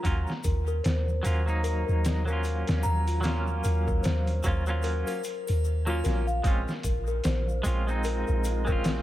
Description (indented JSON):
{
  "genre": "trip hop",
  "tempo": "75 BPM",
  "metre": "4/4",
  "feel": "swing 58% on 16ths",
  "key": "unclear",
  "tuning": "A4 = 440 Hz",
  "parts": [
    { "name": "semi-hollow electric guitar", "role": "accompaniment", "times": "0.0-9.0 s", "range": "Gb3 to F4", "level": "-33 LUFS", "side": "right 1 dB", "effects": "tremolo, tape echo" },
    { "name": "celesta", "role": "arpeggios", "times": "0.0-9.0 s", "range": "F4 to Bb5", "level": "-33 LUFS", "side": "left 3 dB", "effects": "tape echo" },
    { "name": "trip hop sampler-style drum kit", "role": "drums", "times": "0.0-9.0 s", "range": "hi-hat, kick drum, snare drum", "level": "-31 LUFS", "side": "equal", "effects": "none" },
    { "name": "egg shaker and triangle", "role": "percussion", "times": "0.0-9.0 s", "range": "none", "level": "-46 LUFS", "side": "left 5 dB", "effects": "none" },
    { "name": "soft 808-style bass", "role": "bass", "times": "0.1-9.0 s", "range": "Bb1 to Eb2", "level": "-27 LUFS", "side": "equal", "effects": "none" },
    { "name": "wind-like tuned noise texture", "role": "texture", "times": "6.9-9.0 s", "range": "F4", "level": "-40 LUFS", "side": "left 3 dB", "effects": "built-in reverb" }
  ],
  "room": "little or no reverb",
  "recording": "none",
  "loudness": "-25 LUFS",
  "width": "side -14 dB against mid",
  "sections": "0.0-6.4 A section; 6.4-9.0 B section",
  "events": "none",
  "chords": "0.0 Ebm7; 6.4 Bbm7"
}